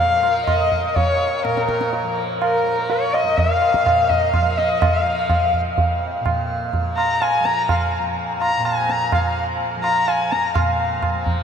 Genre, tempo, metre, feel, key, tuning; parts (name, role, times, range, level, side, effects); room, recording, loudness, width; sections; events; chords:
indian classical, Hindustani; 125 BPM; 3/4; straight; F raga malkauns; A4 = 440 Hz
warm sarangi; melody; 0.0-11.2 s; Bb4 to Bb5; -20 LUFS; left 3 dB; tape echo
tanpura; drone; 0.0-11.4 s; F2 to F3; -28 LUFS; equal
pedal harmonium; second line; 0.1-10.7 s; Bb4 to Bb5; -26 LUFS; left 1 dB; tape echo
tabla; percussion; 0.2-11.4 s; -22 LUFS; right 3 dB
wet huge ambient reverb, RT60 9.4 s; dreamy mix soaked in reverb; -17 LUFS; side -7 dB against mid
0.0-10.6 A section